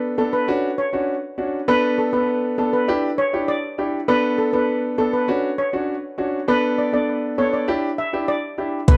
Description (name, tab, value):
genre	dancehall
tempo	100 BPM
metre	4/4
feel	straight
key	B minor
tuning	A4 = 440 Hz
part	warm grand piano	accompaniment	0.0-9.0 s	B3 to A4	-24 LUFS	equal	none
part	steel pan	melody	0.2-9.0 s	A4 to E5	-25 LUFS	equal	delay
part	fat analog bass	bass	8.9-9.0 s	B1	-21 LUFS	equal	none
part	afro-pop drum kit	drums	8.9-9.0 s	hi-hat, kick drum	-12 LUFS	equal	none
room	light reverb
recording	dark, warm production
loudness	-21 LUFS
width	mono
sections	0.0-9.0 A section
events	none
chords	0.5 Dmaj7; 1.7 Bm7; 2.9 Em7; 4.1 Bm7; 5.3 Dmaj7; 6.5 Bm7; 7.7 Em7